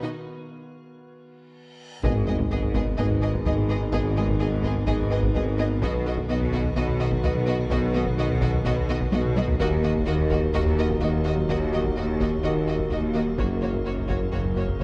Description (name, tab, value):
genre	cinematic, hybrid orchestral and electronic film score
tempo	127 BPM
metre	4/4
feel	straight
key	G# minor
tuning	A4 = 438 Hz
part	clear symphonic violin section	second line	0.0-14.8 s	F#4 to D#5	-39 LUFS	equal	none
part	dark symphonic viola section	accompaniment	0.0-14.8 s	A#3 to D#4	-38 LUFS	equal	none
part	metallic inharmonic drone	sustained chords	0.0-14.8 s	D#3 to B4	-38 LUFS	equal	chorus, built-in reverb
part	soft round pluck	arpeggios	0.0-14.8 s	D#3 to B4	-39 LUFS	equal	none
part	rich symphonic cello section	bass	0.0-14.8 s	D#2 to B2	-33 LUFS	equal	none
part	reverse cymbal and sub drop	sound effects	1.9-3.9 s	none	-35 LUFS	equal	none
part	warm symphonic violin section	melody	2.0-14.8 s	C#5 to D#5	-38 LUFS	equal	none
part	dark French horn section	sustained chords	2.0-14.8 s	A#3 to F#4	-36 LUFS	equal	none
part	warm trombone section	sustained chords	2.0-14.8 s	C#3 to G#3	-40 LUFS	equal	none
part	smooth gliding synth bass	riff	2.0-14.8 s	D#2 to B3	-36 LUFS	equal	none
part	punchy sub bass	bass	2.0-14.8 s	D#1 to B1	-35 LUFS	equal	none
part	warm symphonic double bass section	bass	2.0-14.8 s	F#1 to D#2	-33 LUFS	equal	none
part	warm tuba	bass	2.0-14.8 s	F#1 to D#2	-32 LUFS	equal	none
part	taiko ensemble	drums	2.0-14.8 s	none	-32 LUFS	equal	none
room	moderate scoring stage reverb, RT60 1.9 s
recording	nothing above 10.6 kHz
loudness	-24 LUFS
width	mono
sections	0.0-2.0 A section; 2.0-14.8 B section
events	break 0.1-2.0; drum fill 1.6-2.0, 9.1-9.6; reverse cymbal 1.9; impact 2.0-3.9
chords	0.0 B; 2.0 G#m; 5.8 B; 9.6 D#m; 13.4 F#